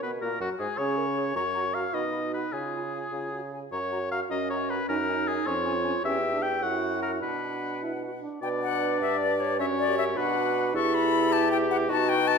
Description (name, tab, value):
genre	quick classical-period movement for wind quintet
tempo	103 BPM (dotted quarters)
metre	6/8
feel	straight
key	F# major, B minor from 6.0 s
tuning	A4 = 440 Hz
part	silver concert flute	melody	0.0-12.4 s	F#4 to C#6	-30 LUFS	left 9 dB	none
part	clear oboe	second line	0.0-12.4 s	F#4 to G5	-30 LUFS	left 3 dB	none
part	clear French horn	accompaniment	0.0-12.4 s	F#3 to G#4	-33 LUFS	right 1 dB	none
part	mellow clarinet	accompaniment	0.0-12.4 s	C#4 to B4	-33 LUFS	right 6 dB	none
part	mellow bassoon	bass	0.0-12.4 s	E2 to C#3	-32 LUFS	right 3 dB	none
room	moderate scoring stage reverb, RT60 1.6 s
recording	none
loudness	-25 LUFS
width	side -5 dB against mid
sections	0.0-8.4 A section; 8.4-12.4 B section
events	none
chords	0.2 F#add9; 0.8 A#m7/C#; 1.4 F#; 1.9 B; 2.5 C#; 3.7 F#; 4.9 G#5/F#; 5.5 C#/E#; 6.0 C#dim/E; 6.6 F#7(no3); 7.2 Bm; 9.6 F#; 10.2 Bm; 10.7 Em